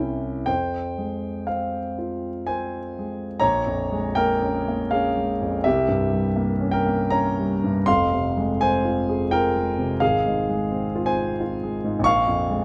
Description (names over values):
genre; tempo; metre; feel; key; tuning
classical, romantic nocturne for solo piano; 57-92 BPM; 3/4; rubato; F minor; A4 = 440 Hz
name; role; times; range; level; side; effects
dark concert grand piano; solo; 0.0-12.6 s; F1 to Db6; -23 LUFS; equal; none
room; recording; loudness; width
light reverb; none; -23 LUFS; mono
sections
0.0-3.4 A section; 3.4-12.6 B section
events
none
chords
0.5 Fm; 3.4 Bbm7; 5.7 C7b9; 7.9 Fm; 10.0 Fm/Ab; 12.1 Bbm7